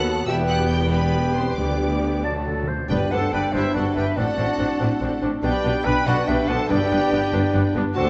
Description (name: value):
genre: quick classical-period movement for symphony orchestra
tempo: 95 BPM (dotted quarters)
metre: 6/8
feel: straight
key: G major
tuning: A4 = 441 Hz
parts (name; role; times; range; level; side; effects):
- clear studio violin section; melody; 0.0-8.1 s; E5 to G6; -36 LUFS; equal; none
- concert flute; second line; 0.0-8.1 s; C5 to A5; -30 LUFS; equal; none
- mellow clarinet; second line; 0.0-8.1 s; D4 to D5; -32 LUFS; equal; none
- rich studio violin section; second line; 0.0-8.1 s; G4 to G5; -35 LUFS; equal; none
- mellow bassoon; accompaniment; 0.0-8.1 s; F#3 to C4; -34 LUFS; equal; none
- rich studio viola section; accompaniment; 0.0-8.1 s; A3 to A4; -32 LUFS; equal; none
- mellow French horn section; sustained chords; 0.0-8.1 s; B3 to G4; -31 LUFS; equal; none
- rich studio cello section; bass; 0.0-8.1 s; D2 to B2; -30 LUFS; equal; none
- rich studio double bass section; bass; 0.0-8.1 s; E1 to D#2; -29 LUFS; equal; none
- timpani; percussion; 1.6-3.5, 6.7-7.3 s; G2 to D3; -34 LUFS; equal; none
- mellow trumpet section; stabs; 2.9-8.1 s; E4 to B4; -30 LUFS; equal; none
room: wet scoring stage reverb, RT60 1.6 s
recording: nothing above 8.0 kHz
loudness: -22 LUFS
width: mono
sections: 0.0-2.9 A section; 2.9-8.1 B section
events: timpani fill 2.2-2.9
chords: 0.3 Em; 1.6 G/D; 2.2 D; 2.9 G; 4.2 D7/A; 5.4 G/B; 6.7 G